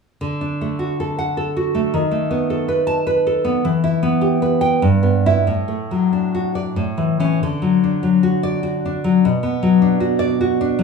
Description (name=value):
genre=romantic piece for solo classical guitar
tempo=90-107 BPM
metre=3/4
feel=rubato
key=D major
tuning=A4 = 440 Hz
part: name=nylon-string guitar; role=solo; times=0.2-10.8 s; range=G2 to A5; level=-16 LUFS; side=left 1 dB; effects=none
room=moderate large studio reverb, RT60 1.2 s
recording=band playing live in one room, studio ambience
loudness=-16 LUFS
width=side -5 dB against mid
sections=0.2-10.8 A section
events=none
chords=0.2 D; 2.0 B7/D#; 3.7 Em; 4.8 Em/G; 5.5 D/A; 6.8 A; 7.4 D; 9.2 Bm